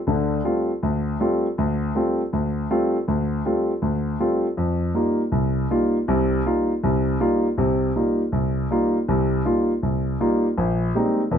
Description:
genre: jazz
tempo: 160 BPM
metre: 4/4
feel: swing 64% on 8ths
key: unclear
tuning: A4 = 440 Hz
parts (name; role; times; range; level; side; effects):
- warm grand piano; solo; 0.1-11.4 s; F1 to F4; -20 LUFS; equal; none
room: wet club ambience, RT60 0.5 s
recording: dark, warm production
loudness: -20 LUFS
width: side -8 dB against mid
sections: 0.0-10.6 A section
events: none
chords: 0.0 G9sus4; 4.6 F9sus4; 10.6 Bb13sus4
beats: | 0.06 0.44 0.82 1.19 | 1.57 1.94 2.32 2.70 | 3.07 3.45 3.82 4.20 | 4.57 4.95 5.33 5.70 | 6.08 6.45 6.83 7.20 | 7.58 7.95 8.32 8.70 | 9.07 9.45 9.82 10.20 | 10.57 10.95 11.32

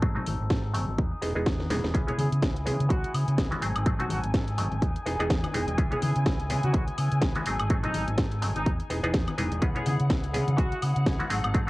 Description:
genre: filtered disco house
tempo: 125 BPM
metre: 4/4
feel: swing 57% on 16ths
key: C# minor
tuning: A4 = 440 Hz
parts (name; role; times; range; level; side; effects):
- muted clav; accompaniment; 0.0-11.7 s; E3 to G#5; -32 LUFS; right 1 dB; phaser, sidechain pumping, low-pass filter, cassette tape
- electric guitar with an envelope filter; riff; 0.0-11.7 s; F#3 to A4; -38 LUFS; left 2 dB; vintage 12-bit sampler grit, sidechain pumping, low-pass filter, cassette tape
- overdriven fingered electric bass; bass; 0.0-11.6 s; E1 to C#3; -29 LUFS; equal; sidechain pumping, low-pass filter
- electronic kick drum; drums; 0.0-11.7 s; none; -26 LUFS; equal; cassette tape
- egg shaker and congas; percussion; 0.0-11.7 s; none; -36 LUFS; left 2 dB; sidechain pumping on perc, low-pass filter on perc
- house drum kit; drums; 0.3-11.7 s; hi-hat, snare drum, woodblock; -34 LUFS; equal; sidechain pumping on hats, cassette tape, sidechain pumping on perc
- rich chamber string section; sustained chords; 1.9-11.7 s; F#5 to G#5; -37 LUFS; left 2 dB; vintage 12-bit sampler grit, sidechain pumping, low-pass filter, cassette tape
- brilliant horn section; melody; 2.1-10.8 s; D#4 to G#4; -36 LUFS; equal; sidechain pumping, low-pass filter, cassette tape, tape echo
room: light reverb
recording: home recording on cassette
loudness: -24 LUFS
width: side -20 dB against mid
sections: 0.0-11.7 A section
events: filter sweep 0.0-11.7; drum fill 1.6-1.9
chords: 0.0 G#7b9; 1.0 Emaj7; 1.9 C#m7; 3.6 G#7b9; 4.8 Emaj7; 5.8 C#m7; 7.5 G#7b9; 8.7 Emaj7; 9.6 C#m7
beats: | 0.02 0.50 0.98 1.46 | 1.94 2.42 2.90 3.38 | 3.86 4.34 4.82 5.30 | 5.78 6.26 6.74 7.22 | 7.70 8.18 8.66 9.14 | 9.62 10.10 10.58 11.06 | 11.54

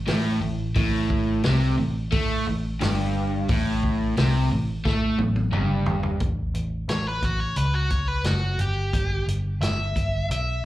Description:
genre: blues rock power trio and southern rock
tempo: 88 BPM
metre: 4/4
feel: straight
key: unclear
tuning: A4 = 440 Hz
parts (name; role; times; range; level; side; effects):
- vintage muted picked electric bass; bass; 0.0-10.7 s; F#1 to A2; -26 LUFS; equal; none
- crunchy overdriven guitar; riff; 0.1-6.2 s; G2 to A3; -24 LUFS; equal; slapback echo
- vintage drum kit; drums; 0.1-10.5 s; hi-hat, kick drum, snare drum, toms; -28 LUFS; equal; none
- nasal lead guitar with a parked wah; melody; 6.9-10.7 s; F#4 to E5; -28 LUFS; equal; overdrive, plate reverb, slapback echo
room: light reverb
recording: live gig heard through the venue's PA, club reverb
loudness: -22 LUFS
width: side -15 dB against mid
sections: 0.0-6.2 A section; 6.2-10.7 B section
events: drum fill 4.9-6.2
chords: 0.0 Gsus24; 6.2 A; 8.6 G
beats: 0.08 | 0.76 1.45 2.13 2.81 | 3.49 4.17 4.85 5.53 | 6.21 6.89 7.57 8.26 | 8.94 9.62 10.29

